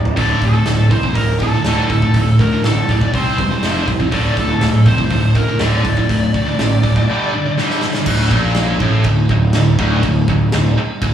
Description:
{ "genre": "heavy metal", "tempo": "122 BPM", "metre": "4/4", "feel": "straight", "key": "D minor", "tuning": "A4 = 439 Hz", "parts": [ { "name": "fuzz picked electric bass", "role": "bass", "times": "0.0-11.1 s", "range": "D1 to D2", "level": "-17 LUFS", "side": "equal", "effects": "overdrive" }, { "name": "big rock drum kit", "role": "drums", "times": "0.1-11.1 s", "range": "crash cymbal, hi-hat, kick drum, snare drum, toms", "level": "-19 LUFS", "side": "right 1 dB", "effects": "none" }, { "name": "high-gain lead guitar", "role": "melody", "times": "0.2-7.5 s", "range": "A4 to D5", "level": "-22 LUFS", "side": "left 1 dB", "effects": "distortion, slapback echo, digital delay" }, { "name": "heavy high-gain guitar", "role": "riff", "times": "0.2-11.1 s", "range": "D2 to C4", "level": "-16 LUFS", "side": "equal", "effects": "distortion, slapback echo" } ], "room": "small room ambience", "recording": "live gig heard through the venue's PA, club reverb", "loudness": "-13 LUFS", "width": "side -10 dB against mid", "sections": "0.0-8.1 A section; 8.1-11.1 B section", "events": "drum fill 0.0, 7.6-8.1; break 7.1-8.1", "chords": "0.2 D5; 3.1 C5; 3.6 F5; 4.1 D5; 7.1 G5; 8.1 D5", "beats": "| 0.18 0.67 1.17 1.66 | 2.16 2.65 3.14 3.64 | 4.13 4.62 5.12 5.61 | 6.10 6.60 7.09 7.58 | 8.07 8.56 9.06 9.55 | 10.04 10.53 11.02" }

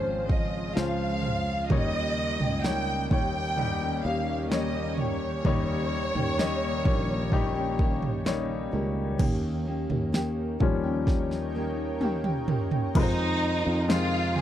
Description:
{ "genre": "pop ballad", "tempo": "64 BPM", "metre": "4/4", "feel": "straight", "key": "unclear", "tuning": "A4 = 440 Hz", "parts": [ { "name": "warm studio violin section", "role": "melody", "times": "0.0-14.4 s", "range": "Eb4 to Ab5", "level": "-30 LUFS", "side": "right 1 dB", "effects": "slapback echo" }, { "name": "warm grand piano", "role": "accompaniment", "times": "0.0-14.4 s", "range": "Eb3 to Eb5", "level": "-32 LUFS", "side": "left 7 dB", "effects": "none" }, { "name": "granular cloud pad", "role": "sustained chords", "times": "0.0-14.4 s", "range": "Db3 to C6", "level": "-37 LUFS", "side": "right 1 dB", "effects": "built-in reverb" }, { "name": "nylon-string guitar", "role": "arpeggios", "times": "0.0-14.4 s", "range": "F2 to G4", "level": "-35 LUFS", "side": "right 1 dB", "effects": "none" }, { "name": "sustaining fretless electric bass", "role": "bass", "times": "0.0-14.4 s", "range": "Ab1 to F2", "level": "-31 LUFS", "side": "equal", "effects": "lush chorus" }, { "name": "deep house drum kit", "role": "drums", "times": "0.3-14.4 s", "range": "crash cymbal, kick drum, snare drum, toms", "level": "-27 LUFS", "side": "right 1 dB", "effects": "none" } ], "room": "little or no reverb", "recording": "dry, close 1970s-style studio recording", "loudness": "-25 LUFS", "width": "side -11 dB against mid", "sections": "0.0-9.2 A section; 9.2-12.9 B section; 12.9-14.4 C section", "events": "grand piano solo 9.2-12.9; drum fill 11.1-12.9", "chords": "0.0 Dbmaj7; 1.7 Eb7; 12.9 Fm7", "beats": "0.76 | 1.70 2.64 3.57 4.51 | 5.45 6.39 7.32 8.26 | 9.20 10.14 11.07 12.01 | 12.95 13.89" }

